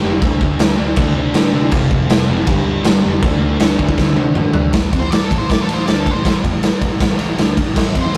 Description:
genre	garage rock duo or trio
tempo	159 BPM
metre	4/4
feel	straight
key	A minor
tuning	A4 = 440 Hz
part	fuzz guitar	riff	0.0-8.2 s	F2 to D4	-21 LUFS	equal	distortion
part	growling picked electric bass	bass	0.0-8.2 s	F1 to C3	-25 LUFS	equal	overdrive
part	raw garage drum kit	drums	0.2-8.2 s	crash cymbal, kick drum, ride cymbal, snare drum, toms	-17 LUFS	equal	none
part	octave-fuzz lead guitar	melody	5.0-8.2 s	A4 to D5	-26 LUFS	equal	distortion, slapback echo
room	light reverb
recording	rough rehearsal-room recording, tube saturation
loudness	-15 LUFS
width	mono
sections	0.0-4.7 A section; 4.7-8.2 B section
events	drum fill 4.0-4.7; lead electric guitar solo 4.7-8.2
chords	0.2 D5; 1.7 F5; 2.5 G5; 3.2 D5; 4.7 A5

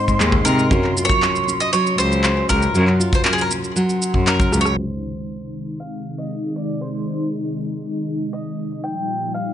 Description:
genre	folktronica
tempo	118 BPM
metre	4/4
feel	straight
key	unclear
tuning	A4 = 440 Hz
part	bowl-back mandolin	melody	0.0-9.5 s	Ab4 to G5	-23 LUFS	right 1 dB	ping-pong delay
part	nylon-string guitar	arpeggios	0.0-4.8 s	Ab2 to C5	-22 LUFS	equal	ping-pong delay
part	flickering grainy texture	texture	0.0-4.8 s	C6	-30 LUFS	left 2 dB	built-in reverb
part	bright cello	bass	0.1-4.7 s	Db2 to C3	-21 LUFS	equal	none
part	electronic shaker, handclaps and rim click	drums	0.1-9.5 s	none	-24 LUFS	equal	low-pass filter on perc, low-pass filter on snare
part	kick drum	drums	0.1-4.5 s	none	-23 LUFS	equal	none
part	warm analog pad	sustained chords	4.8-9.5 s	Bb2 to Eb4	-25 LUFS	left 1 dB	chorus
room	light reverb, studio reverb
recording	low-pass filter, nothing above 10.4 kHz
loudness	-17 LUFS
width	side -10 dB against mid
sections	0.0-4.8 A section; 4.8-9.5 B section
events	drum fill 4.5; filter sweep 4.8-9.5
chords	0.0 Ab; 0.7 Gbmaj7; 4.8 Ab; 8.8 Ebadd9

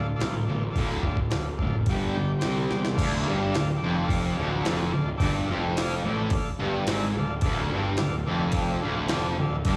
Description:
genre	garage rock duo or trio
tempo	108 BPM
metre	4/4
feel	straight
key	D minor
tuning	A4 = 435 Hz
part	overdriven combo organ	sustained chords	0.0-9.8 s	G4 to G5	-37 LUFS	equal	lush chorus
part	fuzz guitar	riff	0.0-9.8 s	D2 to C4	-29 LUFS	equal	distortion
part	fuzz picked electric bass	bass	0.0-9.8 s	D1 to E2	-33 LUFS	equal	overdrive
part	jungle sampler-style drum kit	drums	0.2-9.8 s	crash cymbal, hi-hat, kick drum, snare drum	-31 LUFS	equal	overdrive
room	little or no reverb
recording	live gig heard through the venue's PA, recital hall reverb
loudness	-26 LUFS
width	mono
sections	0.0-3.0 A section; 3.0-9.8 B section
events	drum fill 2.7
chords	0.0 Dm; 1.9 G5; 2.4 C5; 3.0 Dm

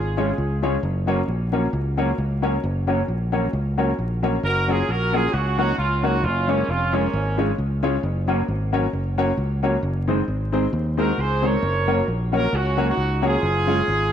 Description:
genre	ska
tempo	133 BPM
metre	4/4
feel	swing 56% on 8ths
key	F# major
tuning	A4 = 439 Hz
part	clear horn section	melody	0.0-0.6, 4.4-7.4, 11.0-14.1 s	A#3 to C#5	-23 LUFS	right 2 dB	tube saturation
part	fingered electric bass	bass	0.0-14.1 s	E#1 to D#2	-23 LUFS	equal	none
part	mellow electric guitar	accompaniment	0.2-13.9 s	D#3 to C#4	-27 LUFS	right 7 dB	none
part	dark upright piano	stabs	0.2-13.8 s	B#3 to C#5	-26 LUFS	left 8 dB	none
room	moderate echo chamber reverb, RT60 2.0 s, small room ambience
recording	1960s-style stereo with parts hard left and right, vinyl crackle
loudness	-19 LUFS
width	side -9 dB against mid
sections	0.0-4.4 A section; 4.4-14.1 A section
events	none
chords	0.0 C#; 0.8 F#; 6.2 C#; 8.0 F#; 9.8 G#/F#; 11.6 F#; 13.4 C#/F#

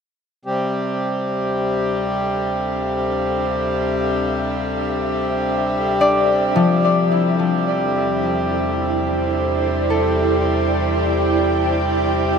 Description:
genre	ambient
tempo	54 BPM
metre	3/4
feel	straight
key	unclear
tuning	A4 = 441 Hz
part	round analog bass	bass	0.4-12.4 s	D2 to E2	-28 LUFS	right 2 dB	none
part	ethereal airy pad	sustained chords	1.9-12.4 s	D4 to G5	-23 LUFS	right 3 dB	ensemble chorus, built-in reverb, tremolo
part	hand-pumped harmonium	drone	0.5-12.4 s	C3 to G3	-20 LUFS	equal	none
part	concert harp	arpeggios	6.0-12.4 s	F3 to D5	-20 LUFS	left 3 dB	ping-pong delay
room	wet huge ambient reverb, RT60 7.7 s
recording	none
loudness	-17 LUFS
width	side -6 dB against mid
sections	0.5-12.4 A section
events	fade-in on ambient pad 0.5-12.4; fade-in on analog synth bass 0.5-12.4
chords	0.5 Dmadd9; 7.1 Cadd9/E

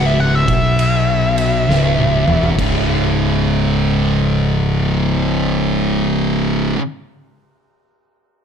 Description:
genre	stoner and doom metal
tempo	67 BPM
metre	4/4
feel	swing 66% on 8ths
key	C# minor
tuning	A4 = 440 Hz
part	fuzz lead guitar	melody	0.0-2.5 s	E5 to F#5	-20 LUFS	equal	distortion, analog delay
part	thick fuzz guitar	riff	0.0-6.8 s	C#2 to C#3	-18 LUFS	left 8 dB	distortion
part	thick fuzz guitar	riff	0.0-6.8 s	C#2 to C#3	-19 LUFS	right 8 dB	distortion
part	fuzz fingered electric bass	bass	0.0-6.7 s	C#1 to B1	-21 LUFS	equal	overdrive
part	oversized low-tuned drum kit	drums	0.5-2.9 s	crash cymbal, kick drum, ride cymbal, snare drum, toms	-23 LUFS	equal	none
room	light reverb, small room ambience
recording	dark, warm production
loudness	-13 LUFS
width	side -7 dB against mid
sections	0.0-2.6 A section; 2.6-6.2 B section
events	lead electric guitar solo 0.0-2.6; drum fill 1.7-2.6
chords	0.0 C#m; 2.6 C#5

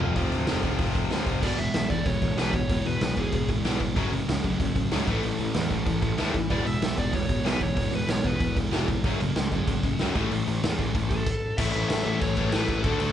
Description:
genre	punk rock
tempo	189 BPM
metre	4/4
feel	straight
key	A major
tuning	A4 = 440 Hz
part	crunchy overdriven guitar	riff	0.0-11.3 s	F2 to F4	-33 LUFS	right 8 dB	none
part	overdriven semi-hollow guitar	riff	0.0-13.1 s	E2 to D4	-30 LUFS	left 6 dB	none
part	sludgy distorted guitar	riff	0.0-13.1 s	E2 to D4	-32 LUFS	equal	overdrive
part	fuzz picked electric bass	bass	0.0-13.1 s	E1 to E2	-31 LUFS	equal	overdrive
part	raw garage drum kit	drums	0.0-13.1 s	crash cymbal, hi-hat, kick drum, snare drum, toms	-28 LUFS	equal	none
part	dark smooth lead guitar	melody	1.4-3.5, 6.5-8.6, 11.1-13.1 s	G#4 to E5	-32 LUFS	right 1 dB	overdrive
room	light reverb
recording	band playing live in one room, nothing above 10.8 kHz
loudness	-23 LUFS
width	side -10 dB against mid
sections	0.2-1.4 A section; 1.4-11.6 B section; 11.6-13.1 C section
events	drum fill 0.0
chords	0.2 F; 1.4 E; 4.0 F#m; 5.1 A5; 6.5 E; 9.0 F#m; 10.2 A5

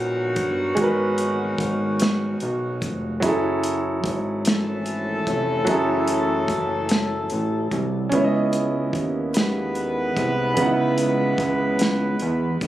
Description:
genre	slow six-eight R&B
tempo	49 BPM (dotted quarters)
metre	6/8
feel	straight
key	unclear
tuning	A4 = 439 Hz
part	clear grand piano	accompaniment	0.0-12.7 s	C#3 to F#5	-25 LUFS	right 2 dB	none
part	mellow horn section	stabs	0.0-12.6 s	D#3 to B4	-25 LUFS	left 1 dB	digital delay
part	fat analog bass	bass	0.0-12.7 s	E#1 to E2	-26 LUFS	equal	none
part	warm soul drum kit	drums	0.4-12.7 s	hi-hat, kick drum, snare drum	-25 LUFS	equal	none
room	light reverb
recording	recorded on a phone in the room, studio reverb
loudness	-20 LUFS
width	side -13 dB against mid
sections	0.0-12.7 A section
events	none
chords	0.0 G#m9; 3.2 F#m9; 8.1 C#m9

